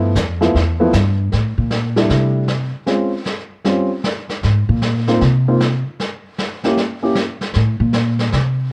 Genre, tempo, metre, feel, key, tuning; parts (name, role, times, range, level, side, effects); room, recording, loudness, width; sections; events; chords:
jazz piano trio; 154 BPM; 4/4; swing 66% on 8ths; A4 = 439 Hz
dark concert grand piano; melody; 0.0-7.1 s; F3 to G4; -19 LUFS; equal
upright bass; bass; 0.0-8.7 s; E2 to C3; -18 LUFS; equal
vintage brush drum kit; drums; 0.2-8.7 s; brushed snare drum, hi-hat, kick drum, snare drum; -26 LUFS; equal
light reverb; worn, warbling old tape, cassette tape, warbly pitch drift; -18 LUFS; mono
0.0-1.3 A section; 1.3-8.7 B section
upright bass solo 1.3-8.7
0.0 G13; 1.3 C6; 2.9 Abadd11; 3.7 Dbmaj7#11/G; 4.4 Abadd9; 6.0 N.C.; 7.5 Am